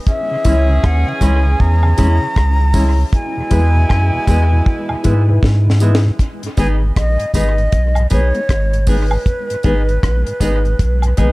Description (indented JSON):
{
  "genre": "roots reggae",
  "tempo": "78 BPM",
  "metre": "4/4",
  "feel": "swing 62% on 16ths",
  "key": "G# minor",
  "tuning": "A4 = 435 Hz",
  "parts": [
    { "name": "breathy silver concert flute", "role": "melody", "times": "0.1-11.3 s", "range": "B4 to A#5", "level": "-22 LUFS", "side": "equal", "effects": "tape echo, plate reverb" },
    { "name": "warm horn section", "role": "second line", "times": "0.1-5.8 s", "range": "B2 to G#4", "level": "-26 LUFS", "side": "right 2 dB", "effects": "tape echo, plate reverb" },
    { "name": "deep reggae drum kit", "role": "drums", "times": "0.1-11.3 s", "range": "hi-hat, kick drum, rim click, snare drum", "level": "-17 LUFS", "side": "equal", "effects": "none" },
    { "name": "mellow tonewheel organ", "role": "accompaniment", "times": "0.3-11.3 s", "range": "E2 to C#4", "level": "-25 LUFS", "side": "left 1 dB", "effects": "chorus vibrato, stopped rotary speaker, dub echo, plate reverb" },
    { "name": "clean electric guitar", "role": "accompaniment", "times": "0.4-11.3 s", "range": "G#3 to G#4", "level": "-28 LUFS", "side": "right 3 dB", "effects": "spring reverb, tape echo, plate reverb" },
    { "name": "dark upright piano", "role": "stabs", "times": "0.4-11.3 s", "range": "D#4 to C#5", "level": "-24 LUFS", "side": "left 4 dB", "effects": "plate reverb" },
    { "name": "tambourine and woodblock", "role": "percussion", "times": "0.4-11.3 s", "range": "none", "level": "-27 LUFS", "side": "right 2 dB", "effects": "none" },
    { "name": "warm sub bass", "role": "bass", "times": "0.5-11.3 s", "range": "G#1 to G#2", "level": "-14 LUFS", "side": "equal", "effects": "none" }
  ],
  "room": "light reverb",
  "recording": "dark, warm production",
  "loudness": "-12 LUFS",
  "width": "side -21 dB against mid",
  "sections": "0.0-6.2 A section; 6.2-11.3 B section",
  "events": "drum fill 5.4-6.2",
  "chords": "0.1 C#m; 3.1 E; 6.2 G#m",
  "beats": "| 0.07 0.83 1.60 2.36 | 3.13 3.90 4.66 5.43 | 6.19 6.96 7.72 8.49 | 9.26 10.02 10.79"
}